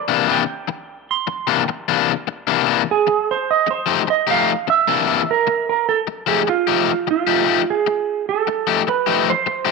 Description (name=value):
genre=blues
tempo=100 BPM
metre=4/4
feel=swing 66% on 8ths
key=unclear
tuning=A4 = 440 Hz
part: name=clean lap steel guitar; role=melody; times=0.0-9.7 s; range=F4 to C6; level=-18 LUFS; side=right 9 dB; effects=none
part: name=crunchy overdriven guitar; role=riff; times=0.1-9.7 s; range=C3 to G4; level=-19 LUFS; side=left 14 dB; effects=none
room=wet spring reverb, RT60 2.1 s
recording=1960s-style stereo with parts hard left and right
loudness=-16 LUFS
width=side -3 dB against mid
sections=0.0-5.9 A section; 5.9-9.7 B section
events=electric slide guitar solo 0.0-5.9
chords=0.0 C9; 3.5 F9; 4.7 C9; 5.9 F9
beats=0.49 | 1.09 1.69 2.29 2.88 | 3.48 4.08 4.68 5.28 | 5.88 6.47 7.07 7.67 | 8.27 8.87 9.47